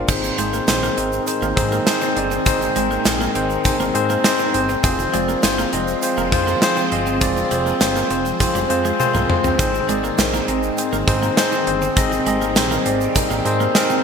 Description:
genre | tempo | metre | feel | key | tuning
1980s-style pop | 101 BPM | 4/4 | straight | unclear | A4 = 440 Hz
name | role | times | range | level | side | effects
tine electric piano | accompaniment | 0.0-14.0 s | Ab2 to Bb5 | -19 LUFS | left 2 dB | medium stereo tremolo
twelve-string electric guitar | riff | 0.0-14.0 s | G3 to C4 | -27 LUFS | right 5 dB | analog chorus
chorused synth bass | bass | 0.0-13.7 s | F1 to Ab2 | -26 LUFS | equal | none
phased string machine | sustained chords | 0.1-14.0 s | Eb3 to C4 | -27 LUFS | right 1 dB | ensemble chorus, phaser
gated 80s drum kit | drums | 0.1-13.9 s | crash cymbal, hi-hat, kick drum, snare drum, toms | -20 LUFS | right 1 dB | none
egg shaker | percussion | 0.1-14.0 s | none | -34 LUFS | right 9 dB | none
room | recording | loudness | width
wet lush hall reverb, RT60 2.4 s | bright 1980s-style digital production | -16 LUFS | side -6 dB against mid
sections
0.1-14.0 A section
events
drum fill 9.0-9.6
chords
0.1 Ab; 4.8 Fm; 9.6 Ab

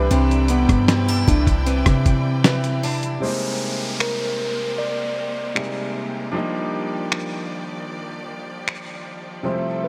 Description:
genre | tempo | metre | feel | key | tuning
contemporary R&B | 77 BPM | 4/4 | straight | unclear | A4 = 445 Hz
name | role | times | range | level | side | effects
mellow tine electric piano | melody | 0.0-9.9 s | B3 to D5 | -27 LUFS | equal | delay
clear baby grand piano | accompaniment | 0.0-9.9 s | C3 to B4 | -30 LUFS | equal | none
clear studio string section | sustained chords | 0.0-9.9 s | Eb3 to B5 | -35 LUFS | equal | none
picked swing-style acoustic guitar | arpeggios | 0.0-3.3 s | C3 to G4 | -31 LUFS | equal | lush chorus, delay
clean 808-style bass | bass | 0.0-3.2 s | C2 to C3 | -23 LUFS | equal | none
dusty soul sampler-style drum kit | drums | 0.1-8.9 s | finger snaps, hi-hat, kick drum, rim click, snare drum | -22 LUFS | equal | vintage 12-bit sampler grit
soft synth bell | texture | 1.3-2.9 s | E4 | -41 LUFS | equal | none
downlifter | sound effects | 3.2-9.5 s | none | -34 LUFS | equal | none
room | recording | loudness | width
moderate lush hall reverb, RT60 2.9 s | bright 1980s-style digital production | -22 LUFS | mono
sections
0.0-3.2 A section; 3.2-9.9 B section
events
none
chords
0.0 Cmaj9; 3.2 Abmaj9; 6.3 Ebmaj9

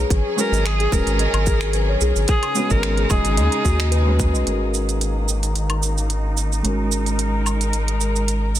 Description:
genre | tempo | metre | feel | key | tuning
organic downtempo | 110 BPM | 4/4 | swing 54% on 16ths | unclear | A4 = 439 Hz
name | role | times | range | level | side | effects
felt-muted upright piano | accompaniment | 0.0-8.6 s | G#3 to D#5 | -27 LUFS | right 2 dB | sidechain pumping, ping-pong delay
rich symphonic string section | sustained chords | 0.0-8.6 s | C#3 to A#4 | -28 LUFS | left 1 dB | sidechain pumping, low-pass filter
round analog bass | bass | 0.0-8.6 s | D#1 to D#2 | -21 LUFS | equal | none
steel tongue drum | arpeggios | 0.1-4.5 s | F#4 to D#5 | -27 LUFS | left 3 dB | ping-pong delay
electronic kick drum | drums | 0.1-4.3 s | none | -20 LUFS | equal | none
organic electronic drum kit | drums | 0.1-8.6 s | cabasa, finger snaps, hi-hat, woodblock | -27 LUFS | right 4 dB | soft clipping on snare
warm kamancheh | melody | 0.4-4.2 s | G#4 to A#4 | -25 LUFS | left 1 dB | ping-pong delay
room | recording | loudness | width
small room ambience | dense, heavily limited modern master | -17 LUFS | side -12 dB against mid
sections
0.0-4.5 A section; 4.5-8.6 B section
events
filter sweep on string section 4.5-8.6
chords
0.1 F#sus4; 4.5 D#m7/G#

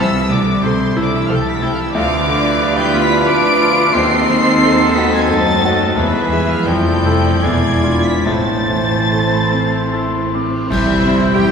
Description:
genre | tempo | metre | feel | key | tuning
classical, romantic movement for piano and orchestra | 68-96 BPM | 3/4 | rubato | A minor | A4 = 440 Hz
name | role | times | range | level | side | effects
clear concert grand piano | melody | 0.0-11.5 s | C2 to B4 | -17 LUFS | equal | none
rich studio violin section | melody | 0.0-11.5 s | E5 to D7 | -22 LUFS | left 2 dB | none
clear oboe | second line | 0.0-11.5 s | C5 to D6 | -22 LUFS | right 1 dB | none
rich studio violin section | second line | 0.0-11.5 s | E4 to F5 | -24 LUFS | left 1 dB | none
rich studio viola section | accompaniment | 0.0-11.4 s | F3 to G#4 | -25 LUFS | right 2 dB | none
warm French horn section | sustained chords | 0.0-11.5 s | E3 to E4 | -24 LUFS | left 2 dB | none
clear trumpet | stabs | 0.0-11.5 s | A4 to D5 | -22 LUFS | equal | none
rich studio cello section | bass | 0.0-11.5 s | C3 to D4 | -22 LUFS | right 2 dB | none
warm studio double bass section | bass | 0.0-11.5 s | E1 to F#2 | -23 LUFS | right 2 dB | none
cymbal swell, clash cymbals and concert bass drum | percussion | 6.0-11.5 s | none | -29 LUFS | equal | none
timpani | percussion | 6.0-6.6 s | E2 | -26 LUFS | left 1 dB | none
mellow concert flute | second line | 9.1-11.5 s | A5 to G6 | -24 LUFS | left 4 dB | none
room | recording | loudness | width
wet concert hall reverb, RT60 2.4 s | recorded in a church or concert hall | -12 LUFS | side -6 dB against mid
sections
0.0-10.7 A section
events
band accent 10.7-11.4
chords
0.0 Am/C; 1.9 Bdim/D; 3.9 D#dim7; 6.0 E; 6.7 Fmaj7; 7.4 E7b9; 8.3 Am; 10.7 C

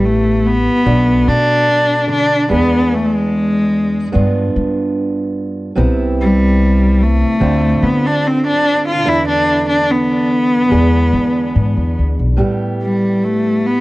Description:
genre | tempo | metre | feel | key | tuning
folk | 73 BPM | 4/4 | straight | A minor | A4 = 440 Hz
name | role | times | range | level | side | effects
rich cello | melody | 0.0-13.8 s | G3 to F4 | -14 LUFS | left 1 dB | tape echo
fingerpicked steel-string acoustic guitar | accompaniment | 0.0-13.8 s | E2 to G#4 | -18 LUFS | right 2 dB | none
upright bass | bass | 0.0-12.4 s | A1 to G3 | -17 LUFS | left 1 dB | none
room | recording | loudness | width
light reverb | dry, close 1970s-style studio recording | -12 LUFS | side -19 dB against mid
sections
0.0-12.4 A section; 12.4-13.8 A section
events
none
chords
0.0 Asus2; 0.8 Bm7; 2.5 E7; 4.1 G7; 5.8 Cmaj7; 7.4 Dm7; 9.1 E7sus4; 10.7 E7; 12.4 Asus2

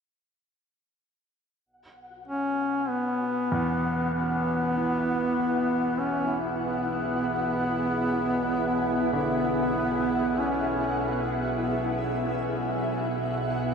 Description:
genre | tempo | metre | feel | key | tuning
dark ambient drone | 48 BPM | 4/4 | straight | unclear | A4 = 440 Hz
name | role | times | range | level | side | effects
granular cloud pad | sustained chords | 2.8-13.7 s | B3 to E5 | -31 LUFS | equal | built-in reverb
overtone-sweeping drone | drone | 2.3-13.7 s | B1 to B2 | -34 LUFS | right 2 dB | chorus, built-in reverb
flickering grainy texture | texture | 2.0-13.7 s | F#5 | -37 LUFS | equal | built-in reverb
warm duduk | melody | 2.3-11.3 s | B3 to C#4 | -27 LUFS | equal | ping-pong delay
clear grand piano | arpeggios | 3.5-13.7 s | E2 to E3 | -34 LUFS | equal | ping-pong delay
room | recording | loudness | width
wet huge ambient reverb, RT60 7.5 s | none | -24 LUFS | side -6 dB against mid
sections
1.6-13.7 A section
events
fade-in on synth drone 1.6-13.7; fade-out on ambient pad 1.6-13.7; fade-out on synth texture 1.6-13.7; fade-out on grand piano 1.6-13.7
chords
1.6 E

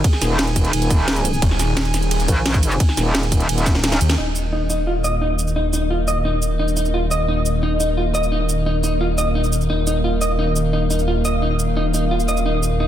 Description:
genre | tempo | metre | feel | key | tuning
dark technical drum and bass | 174 BPM | 4/4 | straight | unclear | A4 = 438 Hz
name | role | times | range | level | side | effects
dark analog pad | sustained chords | 0.0-12.9 s | Eb3 to Ab5 | -24 LUFS | right 1 dB | chorus, sidechain pumping
metallic wobble bass | bass | 0.0-4.0 s | Eb1 to Bb1 | -19 LUFS | equal | chorus
drum and bass drum kit | drums | 0.0-12.7 s | cabasa, hi-hat, ride cymbal, snare drum | -23 LUFS | right 1 dB | overdrive
electronic kick drum | drums | 0.0-3.7 s | none | -17 LUFS | equal | overdrive
wide detuned saw bass | bass | 1.4-12.9 s | Eb1 to Eb2 | -20 LUFS | equal | chorus, overdrive
electric guitar at the edge of break-up | arpeggios | 4.2-12.9 s | Eb4 to Eb5 | -22 LUFS | left 1 dB | vibrato effect, sidechain pumping, low-pass filter, digital delay
room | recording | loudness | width
light reverb, digital ambience | dense, heavily limited modern master | -17 LUFS | side -11 dB against mid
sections
0.0-4.2 A section; 4.2-12.9 B section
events
drop 0.0-4.2; drum fill 3.7-4.2; band accent 4.1; filter sweep on clean electric guitar 4.2-12.9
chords
0.0 Eb5

